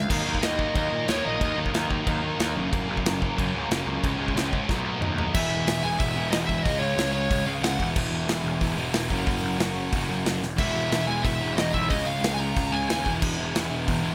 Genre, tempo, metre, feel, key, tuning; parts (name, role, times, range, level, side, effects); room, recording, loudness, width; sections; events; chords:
punk rock; 183 BPM; 4/4; straight; A4 = 437 Hz
smooth overdriven lead guitar; melody; 0.0-1.6, 5.3-7.9, 10.6-13.1 s; C#5 to A#5; -31 LUFS; equal
biting overdriven guitar; riff; 0.0-14.1 s; F#2 to G#4; -33 LUFS; equal
sludgy distorted guitar; riff; 0.0-14.1 s; E2 to D#4; -32 LUFS; equal; overdrive
fuzz picked electric bass; bass; 0.0-14.1 s; E1 to A#2; -33 LUFS; equal; overdrive
big rock drum kit; drums; 0.1-14.0 s; crash cymbal, hi-hat, kick drum, snare drum, toms; -31 LUFS; equal
light reverb; -26 LUFS; mono
0.1-5.3 A section; 5.3-14.1 B section
drum fill 4.7-5.3, 10.4
0.1 D#m; 2.6 F#; 4.0 C#; 4.7 B7; 5.3 E; 6.7 C#; 7.8 E; 9.1 F#; 10.6 E; 11.9 C#; 13.1 E